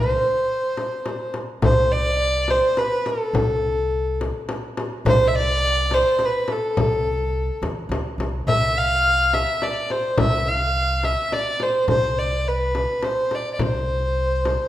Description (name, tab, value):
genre	Persian modal ensemble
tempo	105 BPM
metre	3/4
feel	straight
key	C dastgah mahur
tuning	A4 = 438 Hz
part	warm violin	melody	0.0-14.7 s	A4 to F5	-20 LUFS	equal	none
part	upright bass	bass	0.0-14.6 s	C2 to E2	-26 LUFS	equal	none
part	frame drum	percussion	0.8-14.6 s	none	-25 LUFS	left 1 dB	none
room	wet recital hall reverb, RT60 1.3 s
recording	minimal, uncompressed stereo recording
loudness	-19 LUFS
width	side -13 dB against mid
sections	0.0-1.6 A section; 1.6-14.7 B section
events	none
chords	none